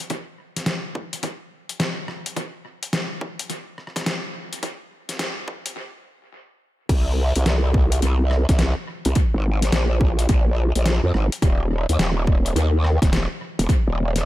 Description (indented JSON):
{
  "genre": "glitch hop",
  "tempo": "106 BPM",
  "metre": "4/4",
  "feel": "swing 64% on 16ths",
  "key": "unclear",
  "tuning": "A4 = 440 Hz",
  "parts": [
    { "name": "boom bap sampler-style drum kit", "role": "drums", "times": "0.0-14.2 s", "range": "crash cymbal, hi-hat, rim click, snare drum", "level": "-27 LUFS", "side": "left 1 dB", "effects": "analog delay" },
    { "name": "electronic kick drum", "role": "drums", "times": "0.1-13.8 s", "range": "none", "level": "-20 LUFS", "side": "equal", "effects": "overdrive, high-pass filter on kick, high-pass filter on room" },
    { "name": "growl bass", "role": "bass", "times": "6.9-14.2 s", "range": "Eb1 to F2", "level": "-19 LUFS", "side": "equal", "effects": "chorus, tube saturation" }
  ],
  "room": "digital ambience",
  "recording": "echo-heavy mix, high-pass filter",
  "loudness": "-19 LUFS",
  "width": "side -16 dB against mid",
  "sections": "0.0-6.9 A section; 6.9-14.3 B section",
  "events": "build-up 0.0-6.9; stop 5.8-6.9; drop 6.9-14.3",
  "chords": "none",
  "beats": "| 0.10 0.67 1.24 1.80 | 2.37 2.94 3.50 4.07 | 4.63 5.20 5.76 6.33 | 6.90 7.46 8.03 8.60 | 9.16 9.73 10.29 10.86 | 11.43 11.99 12.56 13.12 | 13.69"
}